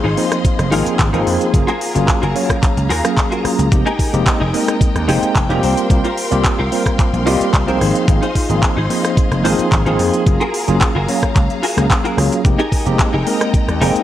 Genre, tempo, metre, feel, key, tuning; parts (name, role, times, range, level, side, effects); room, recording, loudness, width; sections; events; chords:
nu-disco, nu disco; 110 BPM; 4/4; straight; F minor; A4 = 440 Hz
tine electric piano; accompaniment; 0.0-14.0 s; F3 to G5; -18 LUFS; equal; medium stereo tremolo, sidechain pumping, tape echo
warm studio string section; sustained chords; 0.0-14.0 s; Ab3 to C6; -25 LUFS; left 2 dB; sidechain pumping
direct-recorded clean electric guitar; riff; 0.0-14.0 s; Eb4 to Eb5; -21 LUFS; left 1 dB; ensemble chorus
vintage slap bass; bass; 0.0-14.0 s; F1 to F2; -18 LUFS; equal; tube saturation
pop drum kit; drums; 0.2-14.0 s; handclaps, hi-hat, rim click; -22 LUFS; equal
electronic kick drum; drums; 0.4-13.7 s; -16 LUFS; equal
little or no reverb; dry, gritty hardware recording; -13 LUFS; side -12 dB against mid
0.0-14.0 A section
0.0 Ab6; 1.5 Gbmaj9; 3.7 Fm11; 5.6 C7sus4; 7.8 Ab6; 10.3 Gbmaj9; 12.4 Fm11